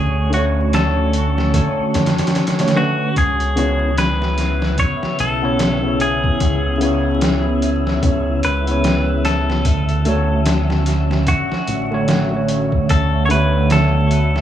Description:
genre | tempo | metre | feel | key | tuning
trip hop | 74 BPM | 4/4 | swing 59% on 16ths | unclear | A4 = 439 Hz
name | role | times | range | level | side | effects
clean electric guitar | melody | 0.0-14.4 s | F#4 to C#5 | -23 LUFS | left 1 dB | vintage 12-bit sampler grit, tape echo
overdriven tine electric piano | accompaniment | 0.0-14.4 s | C#3 to C#5 | -20 LUFS | right 1 dB | harmonic tremolo, tape echo
warbly tape-like pad | sustained chords | 0.0-14.4 s | C#3 to F#4 | -25 LUFS | left 2 dB | chorus, built-in reverb, vintage 12-bit sampler grit
deep dub fingered electric bass | bass | 0.0-14.4 s | A1 to F#2 | -20 LUFS | equal | none
wind-like tuned noise texture | texture | 0.0-14.4 s | C#5 to E5 | -30 LUFS | left 1 dB | built-in reverb
trip hop sampler-style drum kit | drums | 0.3-14.4 s | hi-hat, kick drum, snare drum | -20 LUFS | equal | none
room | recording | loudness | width
little or no reverb | vinyl crackle, small room ambience | -15 LUFS | side -10 dB against mid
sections
0.0-14.4 A section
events
none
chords
0.0 Dmaj7; 3.2 C#m7; 9.7 Dmaj7

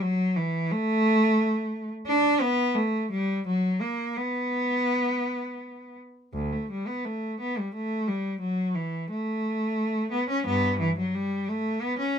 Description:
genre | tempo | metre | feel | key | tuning
classical, baroque-style suite movement for unaccompanied cello | 80-90 BPM | 3/4 | rubato | B minor | A4 = 440 Hz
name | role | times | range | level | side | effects
rich cello | solo | 0.0-12.2 s | D2 to D4 | -24 LUFS | equal | none
room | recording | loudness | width
light reverb | close, detailed microphones | -24 LUFS | side -7 dB against mid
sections
0.0-6.3 A section; 6.3-12.2 A section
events
none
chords
none

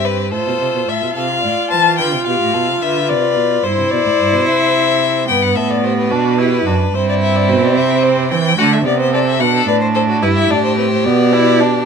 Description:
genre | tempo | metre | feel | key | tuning
classical, baroque-style fugue for string quartet | 73 BPM (dotted quarters) | 12/8 | straight | C major | A4 = 440 Hz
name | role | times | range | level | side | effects
rich violin | melody | 0.0-11.9 s | B4 to A5 | -17 LUFS | left 7 dB | none
warm violin | second line | 0.0-11.8 s | E4 to D5 | -21 LUFS | left 3 dB | none
warm viola | accompaniment | 0.0-11.9 s | A3 to F4 | -18 LUFS | right 3 dB | none
warm cello | bass | 0.0-11.9 s | F#2 to E3 | -17 LUFS | right 4 dB | none
room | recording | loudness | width
light reverb | minimal, uncompressed stereo recording | -12 LUFS | side -6 dB against mid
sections
0.0-11.9 A section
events
none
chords
0.3 F/A; 2.0 G7; 3.6 C/G; 5.3 G; 6.9 C/G; 8.6 D7; 10.2 G

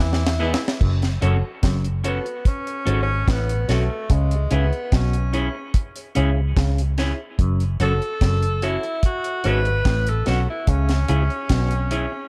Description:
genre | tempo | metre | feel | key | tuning
roots reggae | 73 BPM | 4/4 | straight | F# minor | A4 = 438 Hz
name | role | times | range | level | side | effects
warm tenor saxophone | melody | 0.0-12.3 s | G#3 to B4 | -29 LUFS | equal | dub echo
auto-wah clav | riff | 0.0-11.7 s | F#2 to E3 | -32 LUFS | equal | none
vintage muted fingered electric bass | bass | 0.0-12.0 s | F#1 to E2 | -23 LUFS | equal | none
deep reggae drum kit | drums | 0.1-12.1 s | crash cymbal, hi-hat, kick drum, snare drum | -24 LUFS | equal | none
warm horn section | second line | 0.4-0.7 s | B2 to E4 | -36 LUFS | equal | none
clean electric guitar | accompaniment | 0.4-12.2 s | B3 to A4 | -33 LUFS | equal | dub echo
dark concert grand piano | stabs | 0.4-12.1 s | E4 to C#5 | -36 LUFS | equal | none
room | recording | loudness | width
light reverb | dark, warm production | -21 LUFS | mono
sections
0.8-12.3 A section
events
drum fill 0.0-0.8; band accent 0.0-0.8; tenor saxophone solo 0.8-12.3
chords
0.0 E; 0.8 F#m; 4.1 C#m; 7.4 F#m; 10.7 C#m

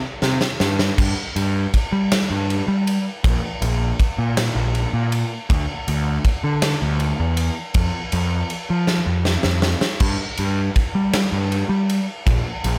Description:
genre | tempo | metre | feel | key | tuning
quiet-loud alternative rock | 53 BPM (dotted quarters) | 6/8 | straight | unclear | A4 = 440 Hz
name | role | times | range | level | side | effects
fuzz picked electric bass | bass | 0.2-12.8 s | Bb1 to G3 | -23 LUFS | equal | overdrive
big rock drum kit | drums | 0.2-12.8 s | crash cymbal, kick drum, ride cymbal, snare drum | -24 LUFS | equal | none
room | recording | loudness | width
little or no reverb | none | -21 LUFS | mono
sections
1.0-12.8 A section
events
drum fill 0.0-1.0, 8.9-10.0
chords
none

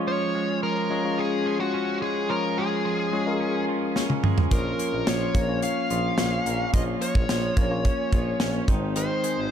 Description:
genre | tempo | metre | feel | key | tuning
1980s-style pop | 108 BPM | 4/4 | straight | Db major | A4 = 440 Hz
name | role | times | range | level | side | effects
tine electric piano | accompaniment | 0.0-9.5 s | Ab3 to Db5 | -28 LUFS | left 4 dB | none
twelve-string electric guitar | riff | 0.0-9.5 s | Eb3 to Db4 | -31 LUFS | right 8 dB | wide subtle chorus
biting lead guitar | melody | 0.1-9.5 s | Gb4 to F5 | -28 LUFS | left 1 dB | overdrive, ping-pong delay
modern studio drum kit | drums | 4.0-9.4 s | hi-hat, kick drum, snare drum, toms | -24 LUFS | right 1 dB | none
warm tuba | bass | 4.5-9.5 s | Ab1 to Bb1 | -30 LUFS | right 1 dB | none
room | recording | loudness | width
moderate lush hall reverb, RT60 2.0 s | dark, warm production | -22 LUFS | side -9 dB against mid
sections
0.0-9.5 A section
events
drum fill 4.0-4.5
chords
0.0 Db; 4.5 Bbm; 8.7 Ab

